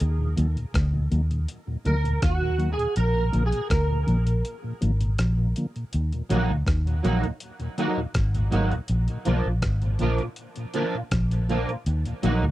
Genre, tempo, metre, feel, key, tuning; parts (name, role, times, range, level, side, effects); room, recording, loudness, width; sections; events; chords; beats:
roots reggae; 81 BPM; 4/4; straight; Eb harmonic minor; A4 = 438 Hz
electric guitar at the edge of break-up; accompaniment; 0.0-12.4 s; F3 to Bb4; -29 LUFS; right 2 dB; ensemble chorus, dub echo
vintage muted fingered electric bass; bass; 0.0-12.5 s; Ab1 to Eb2; -23 LUFS; equal
dusty soul sampler-style drum kit; drums; 0.0-12.4 s; hi-hat, kick drum, rim click; -28 LUFS; equal
mellow tonewheel organ; accompaniment; 0.2-12.5 s; Eb2 to Bb3; -31 LUFS; left 1 dB; slow rotary speaker, dub echo
little or no reverb; dry, close 1970s-style studio recording; -22 LUFS; side -15 dB against mid
0.0-5.9 A section; 5.9-12.5 B section
clean electric guitar solo 0.0-5.9; break 4.4-5.9
0.0 Ebm; 3.0 Bb; 5.9 Ebm; 8.9 Bb; 11.8 Ebm
| 0.00 0.74 1.48 2.22 | 2.96 3.70 4.44 5.18 | 5.92 6.67 7.41 8.15 | 8.89 9.63 10.37 11.11 | 11.85